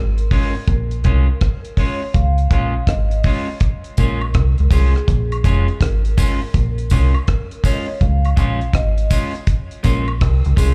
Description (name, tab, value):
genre	roots reggae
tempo	82 BPM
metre	4/4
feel	swing 65% on 16ths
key	Bb minor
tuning	A4 = 440 Hz
part	vibraphone with soft mallets	melody	0.0-10.7 s	Ab4 to F5	-32 LUFS	equal	slapback echo
part	deep dub fingered electric bass	bass	0.0-10.7 s	F1 to Db2	-18 LUFS	equal	none
part	deep reggae drum kit	drums	0.2-10.7 s	hi-hat, kick drum, rim click	-20 LUFS	equal	vintage 12-bit sampler grit
part	electric guitar at the edge of break-up	accompaniment	0.3-10.7 s	Ab3 to F4	-29 LUFS	equal	slapback echo
part	tambourine and woodblock	percussion	4.0-10.7 s	none	-36 LUFS	equal	none
room	studio ambience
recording	live gig heard through the venue's PA, club reverb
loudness	-17 LUFS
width	mono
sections	0.0-10.7 A section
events	none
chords	0.0 Bbm7